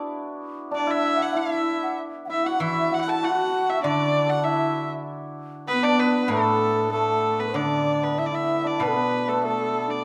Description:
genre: chinese traditional, Chinese chamber ensemble.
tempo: 97 BPM.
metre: 2/4.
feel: rubato.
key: A zhi mode.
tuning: A4 = 440 Hz.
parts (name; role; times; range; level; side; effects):
hammered dulcimer; second line; 0.0-10.0 s; A3 to A4; -30 LUFS; equal; none.
clear erhu; melody; 0.7-10.0 s; A4 to A5; -29 LUFS; equal; none.
breathy bright low xiao; second line; 0.7-10.0 s; A4 to F#5; -30 LUFS; equal; none.
dark horsehead fiddle; second line; 0.7-10.0 s; A3 to F#4; -31 LUFS; equal; none.
guzheng; accompaniment; 2.6-10.0 s; A2 to E3; -31 LUFS; equal; none.
room: moderate recital hall reverb, RT60 1.3 s.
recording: none.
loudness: -23 LUFS.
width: mono.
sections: 0.0-7.6 A section; 7.6-10.0 B section.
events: none.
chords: none.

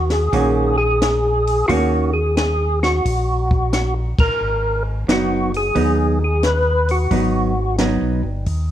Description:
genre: soul jazz organ trio.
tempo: 88 BPM.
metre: 4/4.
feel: swing 67% on 8ths.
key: Eb minor.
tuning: A4 = 440 Hz.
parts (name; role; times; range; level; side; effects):
percussive tonewheel organ; melody; 0.0-7.8 s; F4 to Cb5; -19 LUFS; left 1 dB; slow rotary speaker, chorus vibrato.
tonewheel organ; bass; 0.0-8.7 s; Gb1 to Eb2; -21 LUFS; equal; overdrive, slow rotary speaker.
compact cocktail drum kit; drums; 0.1-8.7 s; hi-hat, kick drum, ride cymbal, snare drum; -22 LUFS; left 1 dB; none.
vintage hollow-body jazz guitar; accompaniment; 0.3-8.2 s; Eb3 to Gb4; -20 LUFS; right 2 dB; none.
room: moderate large studio reverb, RT60 1.2 s.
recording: worn, warbling old tape, cassette tape, warbly pitch drift.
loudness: -16 LUFS.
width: side -11 dB against mid.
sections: 0.0-8.7 A section.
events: band accent 4.1-4.4.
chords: 0.0 Ebm7; 4.4 Abm7.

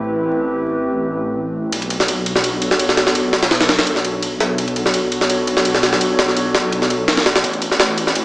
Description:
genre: drum and bass, jungle.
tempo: 168 BPM.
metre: 4/4.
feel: swing 53% on 16ths.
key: unclear.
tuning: A4 = 440 Hz.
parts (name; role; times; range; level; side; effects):
warbly tape-like pad; sustained chords; 0.0-8.2 s; A3 to C#5; -21 LUFS; equal; chorus, built-in reverb.
detuned saw bass; bass; 0.0-8.2 s; A1 to B1; -26 LUFS; equal; high-pass filter.
jungle sampler-style drum kit; drums; 1.7-8.2 s; kick drum, ride cymbal, snare drum; -15 LUFS; equal; high-pass filter on cymbals, high-pass filter on snare, high-pass filter on kick, high-pass filter on room.
open jazz drum kit; drums; 7.4-8.2 s; hi-hat, snare drum; -30 LUFS; right 1 dB; none.
room: moderate echo chamber reverb, RT60 2.1 s.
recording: vinyl crackle, small speaker sound.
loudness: -15 LUFS.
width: side -22 dB against mid.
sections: 0.0-7.4 A section.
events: none.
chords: 0.0 Am9; 1.7 Bm9; 7.4 Am9.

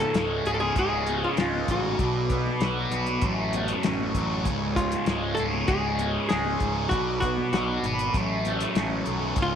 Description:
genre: psychedelic rock.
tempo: 98 BPM.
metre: 4/4.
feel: straight.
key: C# phrygian dominant.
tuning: A4 = 440 Hz.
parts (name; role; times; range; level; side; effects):
archtop guitar, miked and amplified; melody; 0.0-9.6 s; E#4 to A4; -28 LUFS; equal; tape echo.
combo organ; sustained chords; 0.0-9.6 s; E#4 to D6; -35 LUFS; right 7 dB; none.
thick fuzz guitar; riff; 0.0-9.6 s; C#2 to B4; -27 LUFS; equal; distortion, phaser.
fuzz picked electric bass; bass; 0.0-9.6 s; C#1 to B1; -31 LUFS; equal; overdrive.
congas; percussion; 0.0-9.2 s; none; -41 LUFS; left 9 dB; none.
cloth-damped thuddy drum kit; drums; 0.1-9.5 s; hi-hat, kick drum, snare drum; -29 LUFS; left 2 dB; none.
room: moderate echo chamber reverb, RT60 1.3 s, small room ambience.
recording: 1960s-style stereo with parts hard left and right.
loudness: -23 LUFS.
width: side -8 dB against mid.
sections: 0.0-9.6 A section.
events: none.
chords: 0.0 C#; 2.0 Bm; 3.2 F#m/A; 4.5 C#; 6.9 Bm; 8.1 F#m/A.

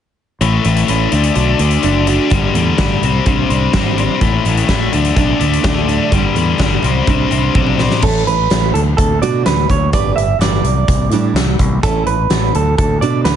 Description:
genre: quiet-loud alternative rock.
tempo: 126 BPM.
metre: 4/4.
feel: straight.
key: unclear.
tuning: A4 = 441 Hz.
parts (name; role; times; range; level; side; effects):
picked steel-string acoustic guitar; arpeggios; 0.4-13.3 s; A2 to B4; -21 LUFS; right 9 dB; none.
biting overdriven guitar; riff; 0.4-8.0 s; G2 to D4; -16 LUFS; left 8 dB; none.
growling fingered electric bass; bass; 0.4-13.4 s; F#1 to B2; -17 LUFS; equal; overdrive.
big rock drum kit; drums; 0.4-13.4 s; crash cymbal, hi-hat, kick drum, snare drum, toms; -17 LUFS; left 1 dB; none.
electric guitar through a small old amp; melody; 8.0-13.4 s; A4 to E5; -18 LUFS; right 6 dB; none.
room: light reverb.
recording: heavily compressed radio sound, nothing above 11.0 kHz.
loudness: -12 LUFS.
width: side -9 dB against mid.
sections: 0.4-8.0 A section; 8.0-13.4 B section.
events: drum fill 7.5-8.0.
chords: 0.4 A; 1.1 D; 2.3 Gsus2; 3.0 Cadd9; 4.2 A5; 4.9 D5; 6.1 Gsus2; 6.8 Cadd9; 8.0 A; 8.7 D; 9.9 Gadd9; 10.6 Cadd9; 11.8 A; 12.6 D.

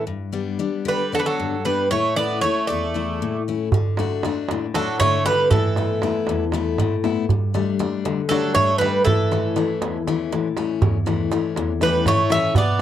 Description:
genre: greek folk, Greek bouzouki band.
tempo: 236 BPM (eighths).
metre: 7/8.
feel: straight.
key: unclear.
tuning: A4 = 440 Hz.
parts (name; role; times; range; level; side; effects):
Greek bouzouki; melody; 0.0-12.8 s; A4 to E5; -21 LUFS; right 2 dB; none.
Greek bouzouki; second line; 0.0-12.8 s; E3 to C#4; -27 LUFS; right 4 dB; none.
picked steel-string acoustic guitar; accompaniment; 0.0-12.8 s; E2 to F#4; -23 LUFS; left 7 dB; none.
darbuka; percussion; 3.7-12.8 s; none; -22 LUFS; right 3 dB; none.
room: light reverb.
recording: dry, close 1970s-style studio recording.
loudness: -18 LUFS.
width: side -10 dB against mid.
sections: 0.0-3.7 A section; 3.7-12.8 B section.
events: speeding up 0.0-12.8.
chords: 0.1 G; 1.9 A; 3.7 D; 5.5 Asus2; 7.3 Gsus2; 9.1 A.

